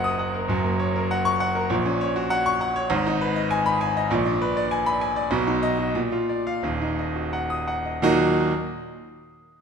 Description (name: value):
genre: classical, virtuoso piano study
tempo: 84-101 BPM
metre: 2/4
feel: rubato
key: Eb minor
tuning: A4 = 441 Hz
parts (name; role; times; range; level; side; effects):
- clear grand piano; solo; 0.0-8.5 s; Eb1 to Eb6; -21 LUFS; equal; none
room: wet scoring stage reverb, RT60 1.6 s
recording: minimal, uncompressed stereo recording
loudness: -21 LUFS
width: side -6 dB against mid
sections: 0.0-8.0 A section; 8.0-9.3 B section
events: slowing down 4.7-8.0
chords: 0.5 Gb; 1.7 Gb/Bb; 2.9 Abm; 4.1 Bb7b9; 5.3 B; 6.0 Bb; 6.6 Ebm